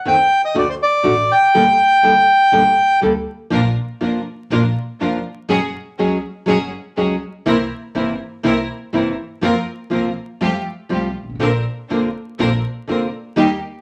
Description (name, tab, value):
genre	tango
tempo	122 BPM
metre	4/4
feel	rubato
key	G harmonic minor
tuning	A4 = 440 Hz
part	bandoneon	melody	0.1-3.0 s	C5 to G5	-14 LUFS	equal	none
part	nylon-string guitar	accompaniment	0.1-13.5 s	C3 to A4	-21 LUFS	equal	none
part	upright bass	bass	0.1-13.6 s	F1 to F2	-28 LUFS	equal	none
part	clear studio string section	stabs	3.5-13.6 s	A3 to Bb4	-27 LUFS	equal	none
room	moderate studio reverb, RT60 0.7 s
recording	vinyl crackle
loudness	-18 LUFS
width	mono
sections	0.0-3.5 A section; 3.5-13.8 B section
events	none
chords	0.0 Adim; 0.6 D; 1.5 Gmadd9; 3.5 Bb; 5.5 Gbsus2; 7.5 C7; 9.4 Fsus4; 10.4 Fadd9; 11.4 Bbadd9